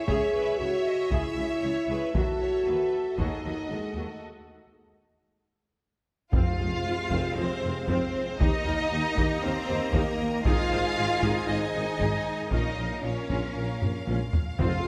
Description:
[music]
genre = cinematic, epic orchestral film score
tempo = 116 BPM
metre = 4/4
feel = straight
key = F minor from 6.3 s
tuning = A4 = 443 Hz
[part]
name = warm symphonic violin section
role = melody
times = 0.0-14.9 s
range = Bb4 to F5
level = -37 LUFS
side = equal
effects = none
[part]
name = rich symphonic violin section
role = second line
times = 0.0-14.9 s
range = F#4 to Bb5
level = -41 LUFS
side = equal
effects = none
[part]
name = dark symphonic viola section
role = accompaniment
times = 0.0-14.9 s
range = C4 to C#5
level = -39 LUFS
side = equal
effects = none
[part]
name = dark French horn section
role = sustained chords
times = 0.0-14.9 s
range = G#3 to Db5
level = -35 LUFS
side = equal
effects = none
[part]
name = rich symphonic cello section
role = bass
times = 0.1-14.9 s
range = C#3 to F4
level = -35 LUFS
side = equal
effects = none
[part]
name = rich symphonic double bass section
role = bass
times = 0.1-14.7 s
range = Ab1 to F2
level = -36 LUFS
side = equal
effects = none
[part]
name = taiko ensemble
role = drums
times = 0.1-14.9 s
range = none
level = -32 LUFS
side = equal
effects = none
[part]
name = bright trombone section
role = sustained chords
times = 6.3-14.9 s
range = Bb2 to Bb3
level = -39 LUFS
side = equal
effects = none
[part]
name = mellow tuba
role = bass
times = 6.3-14.7 s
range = F1 to Eb2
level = -38 LUFS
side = equal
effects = none
[part]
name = timpani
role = percussion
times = 6.3-7.1, 14.6-14.9 s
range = F2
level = -36 LUFS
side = equal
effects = none
[sound]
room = wet scoring stage reverb, RT60 1.8 s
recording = none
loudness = -27 LUFS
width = mono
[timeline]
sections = 0.0-6.3 A section; 6.3-14.9 B section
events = break 4.2-6.3; drum fill 5.5-6.3, 13.8-14.6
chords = 0.0 C#m; 2.2 D#dim; 4.2 N.C.; 6.3 Fm; 8.4 Eb; 10.5 Ab; 12.5 Bbm

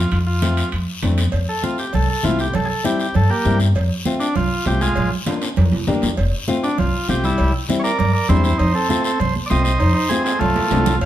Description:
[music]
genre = latin, cumbia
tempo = 198 BPM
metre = 4/4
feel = straight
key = F major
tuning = A4 = 440 Hz
[part]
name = combo organ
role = melody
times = 0.0-11.1 s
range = G3 to F5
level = -21 LUFS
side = right 1 dB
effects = none
[part]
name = nylon-string guitar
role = accompaniment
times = 0.0-10.9 s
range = G3 to D5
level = -23 LUFS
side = left 3 dB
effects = none
[part]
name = upright bass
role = bass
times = 0.0-11.1 s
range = F1 to G2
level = -19 LUFS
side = equal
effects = none
[part]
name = congas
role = percussion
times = 0.1-11.1 s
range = none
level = -26 LUFS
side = right 4 dB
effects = none
[part]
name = guiro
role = percussion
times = 0.1-11.1 s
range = none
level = -30 LUFS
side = left 4 dB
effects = none
[part]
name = timbales and cowbell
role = percussion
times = 0.1-11.1 s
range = none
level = -30 LUFS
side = right 4 dB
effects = none
[part]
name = breathy clarinet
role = second line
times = 11.0-11.1 s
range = F3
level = -32 LUFS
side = right 3 dB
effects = none
[sound]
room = wet studio reverb, RT60 0.8 s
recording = heard from further back in the room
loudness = -16 LUFS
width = side -12 dB against mid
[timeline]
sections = 0.0-1.3 A section; 1.3-11.0 B section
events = transistor combo organ solo 1.3-11.0; drum fill 5.3-6.2, 10.3-11.0; nylon-string guitar fill 5.7-6.2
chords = 0.0 F; 2.5 C7; 3.8 F; 5.0 Bb; 6.2 F; 7.4 C7; 8.6 F

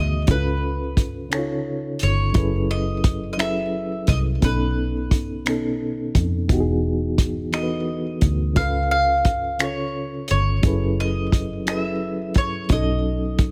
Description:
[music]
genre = slow six-eight R&B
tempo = 58 BPM (dotted quarters)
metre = 6/8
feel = straight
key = unclear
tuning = A4 = 440 Hz
[part]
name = mandolin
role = melody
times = 0.0-13.5 s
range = B4 to E#5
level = -28 LUFS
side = equal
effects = none
[part]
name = mellow reed electric piano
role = accompaniment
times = 0.0-13.5 s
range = B2 to C#5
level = -28 LUFS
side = equal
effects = fast tremolo
[part]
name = vintage muted fingered electric bass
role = bass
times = 0.0-13.5 s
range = E1 to F2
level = -26 LUFS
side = equal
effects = none
[part]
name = warm soul drum kit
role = drums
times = 0.3-13.5 s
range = finger snaps, hi-hat, kick drum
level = -24 LUFS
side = equal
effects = none
[sound]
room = small room ambience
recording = none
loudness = -22 LUFS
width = mono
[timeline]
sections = 0.0-13.5 A section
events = none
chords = 0.3 C#7b13; 2.4 F#m11; 4.4 B9; 6.5 Emaj7; 8.6 C#7b13; 10.6 F#m11; 12.7 B9

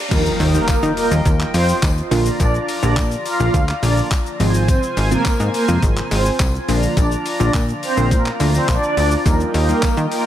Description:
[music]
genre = dance-pop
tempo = 105 BPM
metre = 4/4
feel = straight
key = Eb major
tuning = A4 = 439 Hz
[part]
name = wavetable chord stab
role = accompaniment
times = 0.0-10.1 s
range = C3 to G4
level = -24 LUFS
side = equal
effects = sidechain pumping
[part]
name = chorused pulse-width pad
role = sustained chords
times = 0.0-10.3 s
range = F4 to Bb5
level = -25 LUFS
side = equal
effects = sidechain pumping
[part]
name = riser and impact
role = sound effects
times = 0.0-2.4 s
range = none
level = -28 LUFS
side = equal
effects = none
[part]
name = filtered supersaw swell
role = melody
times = 0.1-10.2 s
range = Bb3 to F5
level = -22 LUFS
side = right 1 dB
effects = tape echo
[part]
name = plucky analog bass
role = bass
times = 0.1-10.1 s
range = Ab1 to Eb3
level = -18 LUFS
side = equal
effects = sidechain pumping
[part]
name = boom bap sampler-style drum kit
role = drums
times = 0.1-10.2 s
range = crash cymbal, handclaps, hi-hat, kick drum, shaker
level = -21 LUFS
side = equal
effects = none
[part]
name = tambourine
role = percussion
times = 0.1-10.2 s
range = none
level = -38 LUFS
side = left 10 dB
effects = none
[sound]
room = little or no reverb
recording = high-pass filter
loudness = -15 LUFS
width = side -11 dB against mid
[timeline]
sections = 0.1-10.3 A section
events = drop 0.1-10.3; impact 0.1-2.4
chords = 0.1 Ebadd9; 2.1 Bb; 4.4 Fm/Ab; 6.7 Bb; 9.3 Ebadd9

